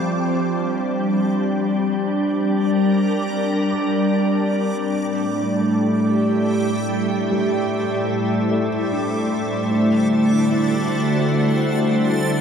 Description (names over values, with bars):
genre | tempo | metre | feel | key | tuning
ambient | 75 BPM | 3/4 | straight | G dorian | A4 = 438 Hz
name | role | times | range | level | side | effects
soft additive organ-like pad | sustained chords | 0.0-12.4 s | A2 to A5 | -18 LUFS | equal | ensemble chorus, built-in reverb
felt-muted upright piano | arpeggios | 0.0-12.4 s | G3 to D6 | -31 LUFS | left 1 dB | none
organ-like drone | drone | 0.0-12.4 s | G3 | -26 LUFS | equal | ensemble chorus, built-in reverb
backwards swelling texture | texture | 0.0-12.4 s | D6 to A6 | -34 LUFS | equal | built-in reverb
room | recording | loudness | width
wet huge ambient reverb, RT60 8.8 s | none | -17 LUFS | side -7 dB against mid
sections
0.1-12.4 A section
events
fade-in on synth texture 0.1-12.4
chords
0.1 Gm9; 4.9 Am7; 9.7 D9